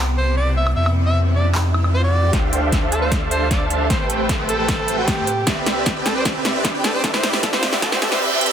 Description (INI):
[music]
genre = future bass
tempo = 153 BPM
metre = 4/4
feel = half-time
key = unclear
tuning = A4 = 440 Hz
[part]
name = shimmering ambient pad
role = sustained chords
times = 0.0-8.2 s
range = C3 to G4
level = -31 LUFS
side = equal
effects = chorus, built-in reverb, phaser, sidechain pumping
[part]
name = saturated sub bass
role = bass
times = 0.0-8.2 s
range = A1 to A2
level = -21 LUFS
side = equal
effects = sidechain pumping
[part]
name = riser and reverse cymbal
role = sound effects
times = 0.6-8.5 s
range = none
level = -29 LUFS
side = right 1 dB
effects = none
[part]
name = breathy alto saxophone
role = melody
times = 0.2-8.2 s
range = G4 to E5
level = -24 LUFS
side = equal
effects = sidechain pumping, tape echo
[part]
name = big-room dance drum kit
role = drums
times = 0.7-8.5 s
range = handclaps, hi-hat, snare drum, woodblock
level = -23 LUFS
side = equal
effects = none
[part]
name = supersaw chords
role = riff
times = 2.3-8.5 s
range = A3 to A5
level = -21 LUFS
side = right 1 dB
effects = analog chorus, sidechain pumping, low-pass filter
[part]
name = electronic kick drum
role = drums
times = 2.3-7.9 s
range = none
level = -23 LUFS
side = equal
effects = none
[sound]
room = light reverb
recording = dense, heavily limited modern master, high-pass filter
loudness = -16 LUFS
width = side -9 dB against mid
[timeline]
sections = 0.0-2.3 A section; 2.3-8.5 B section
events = riser 0.6-2.3; build-up 2.3-8.5; drum fill 2.3-8.2; filter sweep on supersaw synth 2.3-8.5; filter sweep 2.3-8.5; reverse cymbal 7.8-8.5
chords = 0.0 Cmaj7; 0.8 Fmaj9; 2.3 Dm11; 3.9 Am9; 5.5 Cmaj7; 7.0 Fmaj9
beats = 0.37 | 0.76 1.16 1.55 1.94 | 2.33 2.72 3.12 3.51 | 3.90 4.29 4.68 5.08 | 5.47 5.86 6.25 6.65 | 7.04 7.43 7.82 8.21